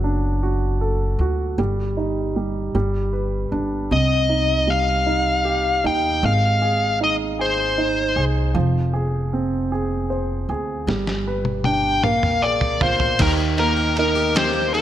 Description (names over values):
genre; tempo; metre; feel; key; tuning
six-eight pop ballad; 52 BPM (dotted quarters); 6/8; straight; unclear; A4 = 441 Hz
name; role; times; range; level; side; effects
warm grand piano; accompaniment; 0.0-14.8 s; C3 to F5; -24 LUFS; right 3 dB; none
upright bass; bass; 0.0-14.8 s; F1 to Eb2; -23 LUFS; equal; none
smooth overdriven lead guitar; melody; 3.9-14.8 s; Bb4 to G5; -20 LUFS; left 2 dB; none
lo-fi sampler-style drum kit; drums; 10.9-14.8 s; crash cymbal, kick drum, ride cymbal, snare drum, toms; -24 LUFS; equal; overdrive, gated reverb
picked plugged-in steel-string acoustic guitar; arpeggios; 13.2-14.8 s; Bb3 to G4; -28 LUFS; left 6 dB; analog chorus
room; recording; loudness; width
light reverb, small room ambience; bright 1980s-style digital production; -18 LUFS; side -11 dB against mid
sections
0.0-13.2 A section; 13.2-14.8 B section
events
drum fill 10.9-13.2; grand piano fill 12.0-13.2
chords
0.0 D/F#; 1.6 Eb/G; 2.7 G; 3.9 Cm; 6.2 Ab; 8.6 Fm; 10.9 G; 12.0 Bb5; 13.2 Eb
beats
0.42 | 1.58 2.75 | 3.91 5.07 | 6.23 7.39 | 8.55 9.71 | 10.88 12.03 | 13.19 14.35